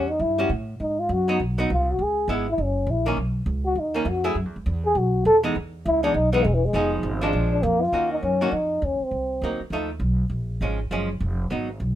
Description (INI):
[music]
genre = jazz, small-group swing and bop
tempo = 202 BPM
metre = 4/4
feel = swing 62% on 8ths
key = Eb minor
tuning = A4 = 440 Hz
[part]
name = trombone with cup mute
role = melody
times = 0.0-9.6 s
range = E3 to A4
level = -22 LUFS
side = left 1 dB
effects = none
[part]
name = archtop guitar, miked and amplified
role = accompaniment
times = 0.0-11.7 s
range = Eb3 to Ab4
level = -26 LUFS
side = right 2 dB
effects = none
[part]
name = upright bass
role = bass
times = 0.0-12.0 s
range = E1 to A2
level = -26 LUFS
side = equal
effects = none
[sound]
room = little or no reverb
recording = minimal, uncompressed stereo recording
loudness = -21 LUFS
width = side -12 dB against mid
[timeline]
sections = 0.0-7.9 A section; 7.9-12.0 B section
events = trombone solo 0.0-7.9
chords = 0.0 A6; 0.8 Abm7; 2.0 Dbm7; 2.6 Gb; 3.2 Badd9; 4.4 Gb5; 5.0 B; 5.6 Emaj7; 6.7 Fm7b5; 7.3 Bb7; 7.9 Ebm7; 9.1 Cm7b5; 9.7 B7#11; 10.3 Bbm7